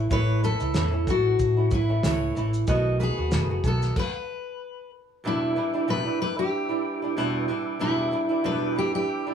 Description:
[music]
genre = acoustic pop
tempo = 94 BPM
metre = 4/4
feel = swing 55% on 16ths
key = unclear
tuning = A4 = 440 Hz
[part]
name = fingerpicked steel-string acoustic guitar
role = melody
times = 0.0-9.3 s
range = E4 to B4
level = -27 LUFS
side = left 2 dB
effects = none
[part]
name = flamenco guitar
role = accompaniment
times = 0.0-9.3 s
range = E2 to F#4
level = -28 LUFS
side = right 3 dB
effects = none
[part]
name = vintage muted fingered electric bass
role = bass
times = 0.0-3.9 s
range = F#1 to A2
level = -25 LUFS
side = equal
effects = none
[part]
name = fingerpicked steel-string acoustic guitar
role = arpeggios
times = 0.1-3.8 s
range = A4 to D#5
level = -33 LUFS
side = right 3 dB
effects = none
[part]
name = cloth-damped thuddy drum kit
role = drums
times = 0.1-4.1 s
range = crash cymbal, kick drum, shaker, snare drum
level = -28 LUFS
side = equal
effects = none
[part]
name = tonewheel organ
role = sustained chords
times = 5.2-9.3 s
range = B4 to D6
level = -35 LUFS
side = equal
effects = overdrive, slow rotary speaker
[sound]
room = wet studio reverb, RT60 0.8 s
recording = band playing live in one room, small room ambience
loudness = -22 LUFS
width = side -8 dB against mid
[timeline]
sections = 0.0-5.2 A section; 5.2-9.3 B section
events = stop 4.0-5.2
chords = 0.0 A; 2.7 B7; 5.2 Em7

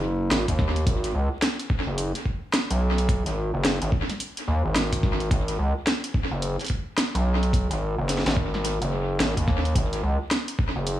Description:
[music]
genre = glitch hop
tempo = 108 BPM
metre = 4/4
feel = swing 62% on 16ths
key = G# minor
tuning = A4 = 440 Hz
[part]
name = gritty driven synth bass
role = bass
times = 0.0-11.0 s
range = F#1 to D#2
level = -24 LUFS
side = equal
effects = overdrive
[part]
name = drum and bass drum kit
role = drums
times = 0.3-11.0 s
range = hi-hat, snare drum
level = -27 LUFS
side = equal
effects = studio reverb, dub echo
[part]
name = electronic kick drum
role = drums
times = 0.5-10.7 s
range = none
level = -25 LUFS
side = equal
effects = studio reverb
[sound]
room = light reverb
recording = echo-heavy mix, vinyl crackle, studio reverb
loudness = -22 LUFS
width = side -13 dB against mid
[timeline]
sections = 0.0-11.0 A section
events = none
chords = none

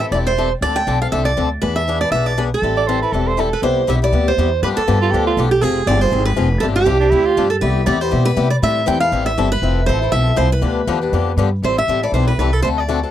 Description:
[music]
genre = acoustic string swing (jazz manouche)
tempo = 240 BPM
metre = 4/4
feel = swing 57% on 8ths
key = A minor, C major from 3.6 s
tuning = A4 = 437 Hz
[part]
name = picked steel-string acoustic guitar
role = melody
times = 0.0-13.1 s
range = G4 to G5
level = -18 LUFS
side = right 3 dB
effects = none
[part]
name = picked swing-style acoustic guitar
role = accompaniment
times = 0.0-13.1 s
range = C3 to A4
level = -21 LUFS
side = left 8 dB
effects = none
[part]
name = upright bass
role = bass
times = 0.1-13.0 s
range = E1 to C3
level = -19 LUFS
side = equal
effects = none
[part]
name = clear soprano saxophone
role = second line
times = 2.8-7.4 s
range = D4 to D5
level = -20 LUFS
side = right 7 dB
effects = none
[sound]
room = little or no reverb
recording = dry, close 1970s-style studio recording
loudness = -14 LUFS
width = side -11 dB against mid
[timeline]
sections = 0.0-3.6 A section; 3.6-11.6 B section; 11.6-13.1 A section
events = none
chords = 0.0 Am7; 0.6 Dm7; 1.6 E7; 2.6 Am7; 3.6 Cmaj7; 4.6 G9; 5.6 Fm; 6.6 G7sus4; 7.6 Cmaj7; 8.6 Am7; 9.6 Fmaj7; 10.6 G7; 11.6 Am7

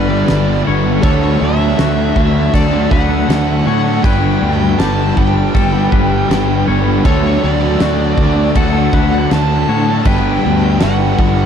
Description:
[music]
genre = rock, shoegaze and dream pop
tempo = 80 BPM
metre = 4/4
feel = straight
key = D major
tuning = A4 = 440 Hz
[part]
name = smooth overdriven lead guitar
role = melody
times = 0.0-11.5 s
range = C#5 to A5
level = -20 LUFS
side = equal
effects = diffuse ambient delay
[part]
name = twangy electric guitar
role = arpeggios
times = 0.0-11.5 s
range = F#4 to C#5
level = -24 LUFS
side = left 6 dB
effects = lush chorus, diffuse ambient delay
[part]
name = biting overdriven guitar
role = riff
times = 0.0-11.5 s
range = D3 to B4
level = -20 LUFS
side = right 8 dB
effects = reverse reverb
[part]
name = distorted electric guitar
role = riff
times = 0.0-11.5 s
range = G2 to D4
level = -20 LUFS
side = right 1 dB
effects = distortion
[part]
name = thick fuzz guitar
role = riff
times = 0.0-11.5 s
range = G2 to D4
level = -19 LUFS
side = left 9 dB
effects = distortion, ensemble chorus
[part]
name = fuzz picked electric bass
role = bass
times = 0.0-11.5 s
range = G1 to A2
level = -16 LUFS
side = equal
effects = overdrive
[part]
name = loose indie drum kit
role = drums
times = 0.3-11.4 s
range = crash cymbal, kick drum, snare drum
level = -18 LUFS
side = equal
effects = none
[sound]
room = moderate huge ambient reverb, RT60 7.6 s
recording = dreamy mix soaked in reverb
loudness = -11 LUFS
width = side -8 dB against mid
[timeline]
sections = 0.0-11.5 A section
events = none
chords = 0.0 Gmaj7; 1.0 Dmaj7; 4.0 G; 7.1 Dmaj7; 10.1 Gmaj7

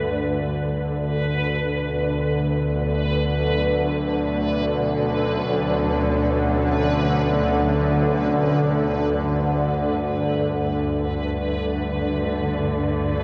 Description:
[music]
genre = dark ambient drone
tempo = free time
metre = none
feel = none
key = unclear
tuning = A4 = 440 Hz
[part]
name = dark studio cello section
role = sustained chords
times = 0.0-13.2 s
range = G2 to C#4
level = -31 LUFS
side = equal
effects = none
[part]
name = bowed-like drone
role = drone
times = 0.0-13.2 s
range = D2 to D3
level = -23 LUFS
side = equal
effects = built-in reverb
[part]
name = backwards swelling texture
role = texture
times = 0.0-13.2 s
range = B4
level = -32 LUFS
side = equal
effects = built-in reverb
[sound]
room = wet huge ambient reverb, RT60 8.8 s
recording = cassette tape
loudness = -22 LUFS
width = mono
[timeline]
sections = 0.0-13.2 A section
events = fade-in on cello section 0.0-13.2; fade-out on synth texture 0.0-13.2; filter sweep on synth drone 0.0-13.2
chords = 0.0 Gadd9; 1.7 Bm; 9.2 Gadd9

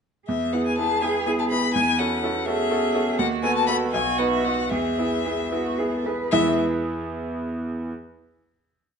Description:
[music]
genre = quick classical-period movement for piano trio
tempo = 73-84 BPM (dotted quarters)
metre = 6/8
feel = rubato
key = E major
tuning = A4 = 438 Hz
[part]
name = rich violin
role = melody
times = 0.3-6.6 s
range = E5 to B5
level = -25 LUFS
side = left 8 dB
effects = none
[part]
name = warm cello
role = second line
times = 0.3-6.6 s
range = G#3 to B4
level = -28 LUFS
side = right 5 dB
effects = none
[part]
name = bright concert grand piano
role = accompaniment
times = 0.3-7.9 s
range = B1 to E5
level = -24 LUFS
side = right 2 dB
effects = none
[sound]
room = wet stone room reverb, RT60 1.0 s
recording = nothing above 10.6 kHz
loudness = -21 LUFS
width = side -6 dB against mid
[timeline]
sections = 0.3-6.3 A section; 6.3-7.9 final chord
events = none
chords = 0.3 E; 1.8 F#m7/E; 3.2 B7/D#; 3.9 B; 4.7 E

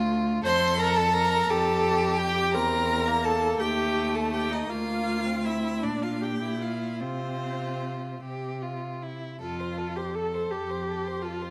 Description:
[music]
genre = classical, slow romantic movement for string quartet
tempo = 49-58 BPM (dotted quarters)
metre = 6/8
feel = rubato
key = F major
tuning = A4 = 441 Hz
[part]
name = rich violin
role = second line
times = 0.0-11.5 s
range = A3 to C5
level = -34 LUFS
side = equal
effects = none
[part]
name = warm cello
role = bass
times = 0.0-11.4 s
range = D2 to C3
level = -33 LUFS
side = equal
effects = none
[part]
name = rich violin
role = melody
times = 0.4-11.5 s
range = C5 to C6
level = -33 LUFS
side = equal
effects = none
[part]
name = warm viola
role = accompaniment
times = 0.4-11.5 s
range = C4 to C5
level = -32 LUFS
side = equal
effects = none
[sound]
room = moderate recital hall reverb, RT60 1.4 s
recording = none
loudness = -27 LUFS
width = mono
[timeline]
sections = 0.0-9.4 A section; 9.4-11.5 B section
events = none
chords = 0.4 F; 1.5 Fadd9; 2.5 C7/E; 3.6 Eb; 4.7 Bb/D; 5.8 Bb; 7.0 F5/C; 9.4 F

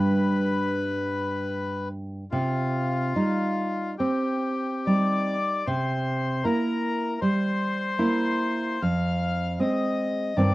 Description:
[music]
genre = romantic duo for bandoneon and classical guitar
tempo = 66-79 BPM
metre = 4/4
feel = rubato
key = C minor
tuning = A4 = 440 Hz
[part]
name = bandoneon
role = melody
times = 0.0-10.5 s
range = F4 to F5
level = -28 LUFS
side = left 3 dB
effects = none
[part]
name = nylon-string guitar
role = accompaniment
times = 0.0-10.5 s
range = F2 to E4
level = -25 LUFS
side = right 1 dB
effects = none
[sound]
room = little or no reverb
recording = dry, close 1970s-style studio recording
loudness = -24 LUFS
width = side -18 dB against mid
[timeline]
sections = 0.0-2.3 A section; 2.3-10.5 B section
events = none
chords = 0.0 G; 2.3 Cm; 5.7 C7; 8.8 Fm

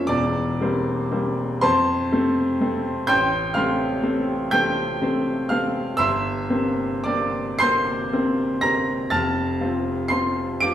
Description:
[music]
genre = classical, romantic nocturne for solo piano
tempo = 35-43 BPM (dotted quarters)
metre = 6/8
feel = rubato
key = F major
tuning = A4 = 441 Hz
[part]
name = bright grand piano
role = solo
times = 0.0-10.7 s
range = E1 to D7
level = -20 LUFS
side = equal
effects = none
[sound]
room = wet large studio reverb, RT60 1.3 s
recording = heard from further back in the room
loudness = -20 LUFS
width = side -11 dB against mid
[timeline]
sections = 0.0-10.7 A section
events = none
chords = 0.1 C7/E; 1.6 F; 3.1 F/A; 6.0 C7/G; 9.1 F

